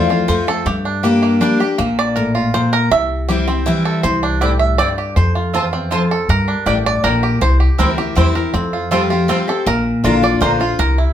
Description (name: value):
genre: bluegrass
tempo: 160 BPM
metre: 3/4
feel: straight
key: F major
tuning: A4 = 440 Hz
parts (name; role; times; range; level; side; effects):
- bluegrass banjo; melody; 0.0-11.1 s; Bb3 to E5; -19 LUFS; right 3 dB; none
- picked steel-string acoustic guitar; accompaniment; 0.0-11.1 s; E2 to G4; -18 LUFS; left 2 dB; none
- upright bass; bass; 0.0-11.0 s; A1 to G2; -18 LUFS; equal; none
- mandolin; stabs; 4.4-10.5 s; A3 to Bb5; -21 LUFS; right 2 dB; none
room: wet studio reverb, RT60 0.7 s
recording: band playing live in one room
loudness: -13 LUFS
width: side -10 dB against mid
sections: 0.0-11.1 A section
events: five-string banjo solo 0.0-11.1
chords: 0.0 F; 0.7 Gm; 1.8 Bb; 2.9 C; 4.0 Cadd9; 5.2 F; 6.3 Gm; 7.4 C; 8.5 Fadd9; 9.7 Bb